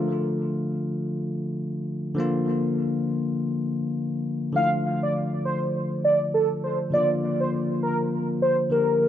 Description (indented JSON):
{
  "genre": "afrobeats",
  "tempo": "101 BPM",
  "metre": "4/4",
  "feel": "swing 58% on 16ths",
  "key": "D minor",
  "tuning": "A4 = 440 Hz",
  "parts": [
    { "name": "bell-like tine electric piano", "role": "accompaniment", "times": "0.0-9.1 s", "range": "C#3 to G4", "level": "-25 LUFS", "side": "left 2 dB", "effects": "tape echo" },
    { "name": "warm velvety synth lead", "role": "melody", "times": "4.6-9.1 s", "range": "A4 to F5", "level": "-23 LUFS", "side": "right 1 dB", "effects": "chorus, tape echo" }
  ],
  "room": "moderate spring reverb, RT60 1.2 s, digital ambience",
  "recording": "echo-heavy mix",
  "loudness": "-23 LUFS",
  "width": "side -10 dB against mid",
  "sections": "0.0-4.6 A section; 4.6-9.1 B section",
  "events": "none",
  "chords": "0.0 Dm; 2.2 Bb; 4.6 Dm; 6.9 Bb"
}